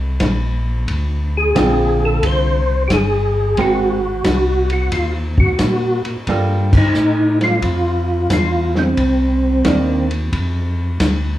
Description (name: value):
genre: soul jazz organ trio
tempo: 89 BPM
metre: 4/4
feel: swing 68% on 8ths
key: unclear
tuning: A4 = 440 Hz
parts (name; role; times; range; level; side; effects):
- tonewheel organ; bass; 0.0-11.4 s; G1 to Bb2; -19 LUFS; equal; overdrive, chorus vibrato, slow rotary speaker
- vintage drum kit; drums; 0.2-11.2 s; crash cymbal, hi-hat, kick drum, ride cymbal, snare drum; -20 LUFS; equal; none
- percussive tonewheel organ; melody; 1.4-10.1 s; C4 to C5; -17 LUFS; equal; slow rotary speaker, chorus vibrato
- archtop guitar, miked and amplified; accompaniment; 1.6-10.1 s; D3 to Bb4; -20 LUFS; right 4 dB; none
room: moderate large studio reverb, RT60 0.7 s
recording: band playing live in one room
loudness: -14 LUFS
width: side -14 dB against mid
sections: 0.0-11.4 A section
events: band accent 6.6-6.9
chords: 0.0 Eb5 (rootless); 0.9 Dm7; 3.6 Ab9; 6.3 Gm9; 9.0 Cm9; 10.3 N.C.